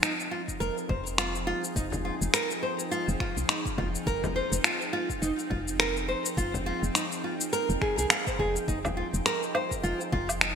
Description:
organic downtempo; 104 BPM; 4/4; swing 57% on 16ths; F minor; A4 = 439 Hz
bowed-like drone; sustained chords; 0.0-10.6 s; F3 to G5; -36 LUFS; right 1 dB; built-in reverb, sidechain pumping
nylon-string guitar; arpeggios; 0.0-10.5 s; Eb4 to F5; -31 LUFS; right 1 dB; digital delay
electronic finger snaps, cabasa and woodblock; drums; 0.0-10.5 s; -27 LUFS; left 1 dB; gated reverb
electronic kick drum; drums; 0.5-10.3 s; -35 LUFS; equal
woody FM bass; bass; 0.6-10.6 s; F1 to C2; -33 LUFS; equal; sidechain pumping
frame drum; percussion; 0.9-10.3 s; -37 LUFS; left 3 dB
moderate lush hall reverb, RT60 2.3 s; bright 1980s-style digital production; -26 LUFS; side -7 dB against mid
0.0-10.6 A section
0.0 Fm7

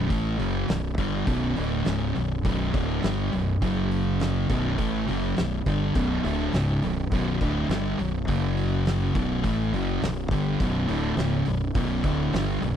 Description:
stoner and doom metal; 103 BPM; 4/4; straight; B minor; A4 = 440 Hz
thick fuzz guitar; riff; 0.0-12.8 s; B1 to A3; -28 LUFS; left 9 dB; distortion
thick fuzz guitar; riff; 0.0-12.8 s; B1 to A3; -27 LUFS; right 8 dB; distortion
growling fingered electric bass; bass; 0.0-12.8 s; B0 to A1; -30 LUFS; equal; overdrive
oversized low-tuned drum kit; drums; 0.1-12.8 s; hi-hat, kick drum, snare drum; -30 LUFS; equal
little or no reverb; dry, close 1970s-style studio recording; -23 LUFS; side -9 dB against mid
0.0-12.8 A section
0.0 Bm; 3.6 F#5; 4.5 Bm; 8.3 F#5; 9.2 Bm

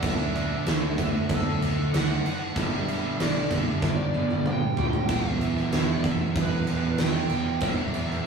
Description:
hard rock; 95 BPM; 4/4; straight; E minor; A4 = 440 Hz
smooth overdriven lead guitar; melody; 0.0-8.3 s; A4 to G5; -33 LUFS; right 1 dB
cranked stack guitar; riff; 0.0-8.3 s; E2 to D4; -31 LUFS; left 2 dB; overdrive
crunchy overdriven guitar; riff; 0.0-8.3 s; E2 to D4; -36 LUFS; right 2 dB
overdriven electric guitar; riff; 0.0-8.3 s; E2 to D4; -33 LUFS; right 6 dB
growling fingered electric bass; bass; 0.0-8.2 s; E1 to D2; -36 LUFS; right 1 dB; overdrive
huge arena drum kit; drums; 0.0-8.2 s; crash cymbal, kick drum, snare drum, toms; -26 LUFS; right 1 dB
moderate studio reverb, RT60 0.5 s; rough rehearsal-room recording, tube saturation, studio ambience; -23 LUFS; side -5 dB against mid
0.0-8.3 A section
drum fill 3.8-5.1
0.0 D; 2.6 G; 5.1 E5

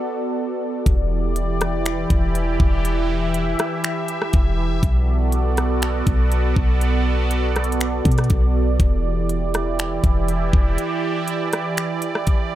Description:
hip hop, atmospheric cloud-rap; 121 BPM; 4/4; half-time; E minor; A4 = 444 Hz
sweeping resonant pad; sustained chords; 0.0-12.6 s; E3 to E5; -23 LUFS; right 2 dB; chorus, sidechain pumping
clean 808-style bass; bass; 0.9-10.8 s; E1 to B2; -20 LUFS; equal
trap drum kit; drums; 0.9-12.4 s; finger snaps, hi-hat, kick drum, rim click; -20 LUFS; equal
little or no reverb; -18 LUFS; side -13 dB against mid
0.9-12.6 A section
break 0.0-0.9
0.0 Bm7; 0.9 Em7; 4.8 Bm7; 8.8 Em7

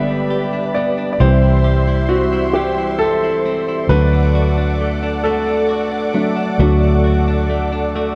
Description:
pop; 44 BPM (dotted quarters); 6/8; straight; A4 = 440 Hz
warm grand piano; accompaniment; 0.0-8.2 s; D3 to F#5; -21 LUFS; equal
lush unison pad; sustained chords; 0.0-8.2 s; G3 to D6; -25 LUFS; equal; chorus
direct-recorded clean electric guitar; arpeggios; 0.0-8.2 s; E3 to G4; -27 LUFS; equal
vintage muted fingered electric bass; bass; 0.0-8.2 s; G1 to D2; -18 LUFS; equal
light reverb; dry, close 1970s-style studio recording; -16 LUFS; mono
0.0-8.2 A section
grand piano solo 0.0-8.2
0.0 G; 1.2 C; 3.9 D

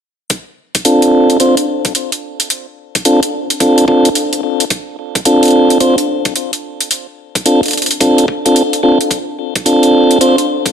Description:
glitch hop; 109 BPM; 4/4; swing 63% on 16ths; D minor; A4 = 441 Hz
electronic hi-hat; drums; 0.3-10.7 s; -16 LUFS; equal; studio reverb
electronic kick drum; drums; 0.3-10.7 s; -18 LUFS; left 1 dB; high-pass filter on kick, studio reverb
tonewheel organ; stabs; 0.8-10.4 s; C4 to C5; -11 LUFS; equal; stopped rotary speaker, sidechain pumping, low-pass filter, ping-pong delay
wet plate reverb, RT60 1.5 s, digital ambience; dreamy mix soaked in reverb; -10 LUFS; side -8 dB against mid
0.3-10.7 A section
0.3 Dm7

